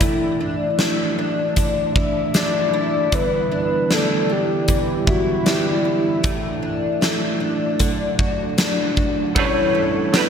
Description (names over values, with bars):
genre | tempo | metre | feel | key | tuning
dream pop | 77 BPM | 4/4 | straight | E minor | A4 = 440 Hz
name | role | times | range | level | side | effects
percussive tonewheel organ | sustained chords | 0.0-10.3 s | D3 to F#5 | -25 LUFS | right 5 dB | fast rotary speaker
picked twelve-string acoustic guitar | arpeggios | 0.0-10.3 s | E2 to F#4 | -23 LUFS | left 2 dB | analog chorus, ping-pong delay
huge arena drum kit | drums | 0.0-10.3 s | hi-hat, kick drum, ride cymbal, snare drum, tambourine | -22 LUFS | equal | none
soft octave-layered synth lead | melody | 2.4-10.3 s | F#4 to D5 | -22 LUFS | left 2 dB | chorus, ping-pong delay
semi-hollow electric guitar | accompaniment | 9.3-10.3 s | E3 to B4 | -22 LUFS | right 8 dB | tremolo, ensemble chorus
room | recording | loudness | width
moderate plate reverb, RT60 2.6 s | bright 1980s-style digital production | -17 LUFS | side -7 dB against mid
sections
0.0-9.4 A section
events
none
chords
0.0 Asus4; 3.1 Em7; 6.2 Asus4; 7.8 D; 9.4 Em11